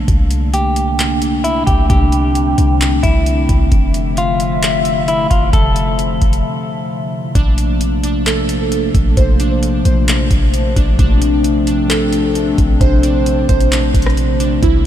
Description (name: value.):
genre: hip hop, atmospheric cloud-rap.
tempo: 132 BPM.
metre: 4/4.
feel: half-time.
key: Bb lydian.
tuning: A4 = 440 Hz.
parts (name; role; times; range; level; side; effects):
dark analog pad; sustained chords; 0.0-14.9 s; C3 to E5; -18 LUFS; left 2 dB; lush chorus, sidechain pumping.
clean 808-style bass; bass; 0.0-14.9 s; F1 to C2; -16 LUFS; equal; none.
booming analog drum machine; drums; 0.1-14.8 s; handclaps, hi-hat, kick drum, rim click; -18 LUFS; equal; overdrive.
semi-hollow electric guitar; melody; 0.5-6.4 s; E4 to A4; -20 LUFS; equal; spring reverb, low-pass filter, tape echo.
glassy digital keys; arpeggios; 7.4-14.9 s; D4 to C5; -21 LUFS; right 5 dB; chorus, low-pass filter, tape echo.
room: light reverb.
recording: none.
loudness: -12 LUFS.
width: side -11 dB against mid.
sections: 0.0-7.4 A section; 7.4-14.9 B section.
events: break 6.4-7.4.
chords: 0.1 C13; 3.7 Fmaj7; 7.4 Bbmaj9.